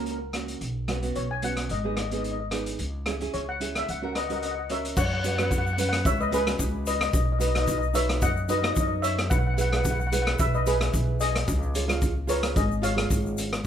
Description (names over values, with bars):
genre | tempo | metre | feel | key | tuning
calypso | 110 BPM | 4/4 | swing 54% on 16ths | unclear | A4 = 440 Hz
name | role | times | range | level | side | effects
steel pan | melody | 0.0-13.3 s | G#4 to G#5 | -29 LUFS | left 3 dB | none
nylon-string guitar | accompaniment | 0.0-13.5 s | A#3 to C#5 | -31 LUFS | right 4 dB | none
upright bass | bass | 0.0-13.6 s | G#1 to F#2 | -29 LUFS | equal | none
raw garage drum kit | drums | 0.1-13.6 s | crash cymbal, hi-hat, kick drum, rim click | -29 LUFS | equal | none
egg shaker | percussion | 5.0-13.6 s | none | -39 LUFS | left 7 dB | none
room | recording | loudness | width
light reverb | none | -24 LUFS | side -9 dB against mid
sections
0.0-5.0 A section; 5.0-13.7 B section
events
none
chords
0.0 F#/C#; 0.6 Bsus2; 1.7 G#m; 2.8 C#m; 3.9 F#/C#; 5.0 F#sus4; 7.1 B; 9.3 E/B; 11.5 C#